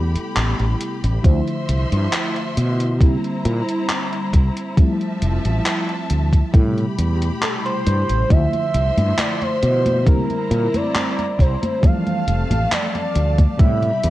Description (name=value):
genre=vaporwave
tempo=68 BPM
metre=4/4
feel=straight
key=A minor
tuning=A4 = 440 Hz
part: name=warm velvety synth lead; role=melody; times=0.0-0.3, 7.4-14.1 s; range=A4 to F5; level=-23 LUFS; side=right 1 dB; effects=chorus, tape echo
part: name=FM electric piano with soft pad layer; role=accompaniment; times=0.0-14.1 s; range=B2 to C5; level=-24 LUFS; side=equal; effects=tremolo, lush chorus, analog delay
part: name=bright studio string section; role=sustained chords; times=0.0-14.1 s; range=F3 to C6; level=-30 LUFS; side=left 1 dB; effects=none
part: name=fretless electric bass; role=bass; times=0.0-14.1 s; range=F1 to C3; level=-19 LUFS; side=equal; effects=none
part: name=gated 80s digital drum machine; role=drums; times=0.2-14.1 s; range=congas, handclaps, hi-hat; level=-25 LUFS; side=equal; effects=gated reverb
part: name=electronic kick drum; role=drums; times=1.2-13.8 s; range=none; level=-14 LUFS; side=equal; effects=none
room=light reverb, digital ambience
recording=cassette tape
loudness=-16 LUFS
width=side -15 dB against mid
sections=0.0-14.1 A section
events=none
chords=0.0 Am9; 1.2 Dm9; 3.0 C7; 4.8 Fmaj7; 6.5 Am9; 8.3 Dm9; 10.1 C7; 11.8 Fmaj7; 13.6 Am9